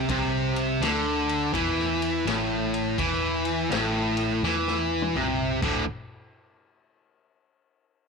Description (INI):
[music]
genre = blues rock power trio and southern rock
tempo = 83 BPM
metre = 4/4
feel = swing 65% on 8ths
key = unclear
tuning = A4 = 440 Hz
[part]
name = distorted electric guitar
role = riff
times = 0.0-5.8 s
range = D2 to E3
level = -24 LUFS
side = equal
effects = overdrive
[part]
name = vintage muted fingered electric bass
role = bass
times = 0.0-5.9 s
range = D1 to E2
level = -33 LUFS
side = equal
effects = none
[part]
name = raw garage drum kit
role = drums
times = 0.1-5.7 s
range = crash cymbal, kick drum, ride cymbal, snare drum, toms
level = -33 LUFS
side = left 5 dB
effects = none
[sound]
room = light reverb, small room ambience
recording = 1960s-style stereo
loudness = -23 LUFS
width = side -4 dB against mid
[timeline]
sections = 0.0-5.9 A section; 5.9-8.1 B section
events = drum fill 4.4-5.9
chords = 0.1 Amadd11; 5.5 D5; 5.9 N.C.